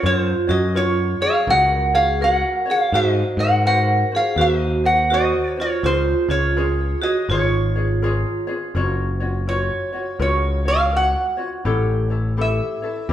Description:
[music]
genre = Hawaiian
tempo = 83 BPM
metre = 4/4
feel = swing 62% on 8ths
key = Db major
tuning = A4 = 440 Hz
[part]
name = metal-body resonator slide guitar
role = melody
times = 0.0-13.1 s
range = C5 to Gb5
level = -20 LUFS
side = right 1 dB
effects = none
[part]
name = ukulele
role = accompaniment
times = 0.0-13.1 s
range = E4 to Db5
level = -26 LUFS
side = left 2 dB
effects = none
[part]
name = overdriven picked electric bass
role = bass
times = 0.0-13.1 s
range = F#1 to Ab2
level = -22 LUFS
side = left 1 dB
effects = none
[part]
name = vibraphone with hard mallets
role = second line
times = 0.1-8.4 s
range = F4 to Bb4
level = -23 LUFS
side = right 3 dB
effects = none
[sound]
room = wet large studio reverb, RT60 1.3 s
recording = band playing live in one room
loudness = -17 LUFS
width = side -11 dB against mid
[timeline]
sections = 0.0-8.7 A section; 8.7-13.1 B section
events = none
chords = 0.0 Gbmaj7; 2.9 Ab13; 5.8 Db6; 8.7 F#maj7; 11.6 A7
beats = | 0.03 0.76 1.48 2.21 | 2.93 3.66 4.39 5.11 | 5.84 6.56 7.29 8.02 | 8.74 9.47 10.20 10.92 | 11.65 12.38 13.10

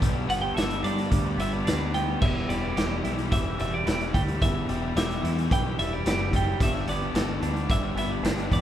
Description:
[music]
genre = indie rock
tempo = 110 BPM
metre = 4/4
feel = straight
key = E minor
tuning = A4 = 440 Hz
[part]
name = clean electric guitar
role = riff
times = 0.0-8.6 s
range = E2 to A4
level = -34 LUFS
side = right 8 dB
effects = none
[part]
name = raw garage guitar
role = riff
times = 0.0-8.6 s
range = E2 to G4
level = -31 LUFS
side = left 6 dB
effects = overdrive
[part]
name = growling fingered electric bass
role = bass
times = 0.0-8.6 s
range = E1 to G2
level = -30 LUFS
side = equal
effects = overdrive
[part]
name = raw garage drum kit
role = drums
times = 0.0-8.6 s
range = crash cymbal, hi-hat, kick drum, snare drum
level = -27 LUFS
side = equal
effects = none
[part]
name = twelve-string electric guitar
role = melody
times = 0.3-8.6 s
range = D5 to G5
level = -32 LUFS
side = right 2 dB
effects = none
[sound]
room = light reverb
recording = none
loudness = -23 LUFS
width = side -11 dB against mid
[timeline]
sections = 0.0-8.6 A section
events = none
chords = 0.0 Gadd9; 2.2 Em; 6.6 Gadd9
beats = | 0.02 0.57 1.12 1.67 | 2.22 2.77 3.32 3.86 | 4.41 4.96 5.51 6.05 | 6.60 7.15 7.70 8.24

